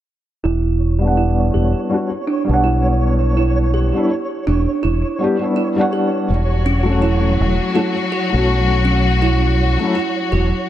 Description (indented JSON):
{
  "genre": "trip hop",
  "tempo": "82 BPM",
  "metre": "4/4",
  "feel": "swing 57% on 16ths",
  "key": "E dorian",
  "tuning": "A4 = 440 Hz",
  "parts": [
    { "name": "music box", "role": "arpeggios", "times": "0.4-10.7 s", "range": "C#4 to G4", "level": "-22 LUFS", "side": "right 5 dB", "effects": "low-pass filter, tape echo" },
    { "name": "flickering grainy texture", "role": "texture", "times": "0.8-10.7 s", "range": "C#5", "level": "-28 LUFS", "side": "right 1 dB", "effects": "built-in reverb" },
    { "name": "deep dub fingered electric bass", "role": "bass", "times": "0.5-10.5 s", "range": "E1 to B1", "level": "-16 LUFS", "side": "equal", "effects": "none" },
    { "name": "felt-muted upright piano", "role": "accompaniment", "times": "1.0-9.9 s", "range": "F#3 to F#5", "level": "-20 LUFS", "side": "left 2 dB", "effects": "tremolo, low-pass filter, tape echo" },
    { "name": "rich chamber string section", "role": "sustained chords", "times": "6.3-10.7 s", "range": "F#3 to F#4", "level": "-20 LUFS", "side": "left 4 dB", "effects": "vintage 12-bit sampler grit" }
  ],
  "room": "light reverb, small room ambience",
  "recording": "none",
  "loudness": "-15 LUFS",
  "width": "side -12 dB against mid",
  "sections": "0.4-10.7 A section",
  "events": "filter sweep on felt piano 0.4-10.7; filter sweep on music box 0.4-10.7",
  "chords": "0.4 Em9; 6.3 F#m/E"
}